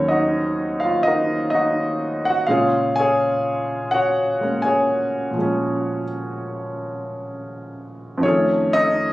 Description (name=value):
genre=solo jazz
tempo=83 BPM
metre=4/4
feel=swing 69% on 8ths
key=Bb minor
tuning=A4 = 440 Hz
part: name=warm concert grand piano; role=solo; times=0.0-9.1 s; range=Eb2 to Ab5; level=-18 LUFS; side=equal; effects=none
room=moderate studio ambience, RT60 0.5 s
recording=recorded on a phone in the room, club reverb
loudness=-18 LUFS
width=side -16 dB against mid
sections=0.0-9.1 A section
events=none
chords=0.0 Ebm7; 2.5 Bbm7; 8.2 F7#9